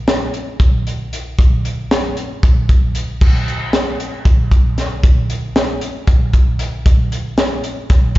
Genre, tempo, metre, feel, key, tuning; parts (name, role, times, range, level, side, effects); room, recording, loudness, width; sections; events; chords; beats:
jazz; 230 BPM (eighths); 7/8; straight
crisp fusion drum kit; drums; 0.1-8.2 s; crash cymbal, hi-hat, kick drum, snare drum; -13 LUFS; equal
little or no reverb; live gig heard through the venue's PA, recital hall reverb, nothing above 7.7 kHz; -13 LUFS; side -17 dB against mid
0.0-3.2 A section; 3.2-8.2 B section
0.07 0.33 0.59 0.86 1.12 | 1.38 1.64 1.91 2.17 2.43 2.69 2.95 | 3.21 3.48 3.74 4.00 4.26 4.52 4.78 | 5.04 5.30 5.56 5.82 6.08 6.34 6.60 | 6.86 7.12 7.38 7.64 7.90 8.16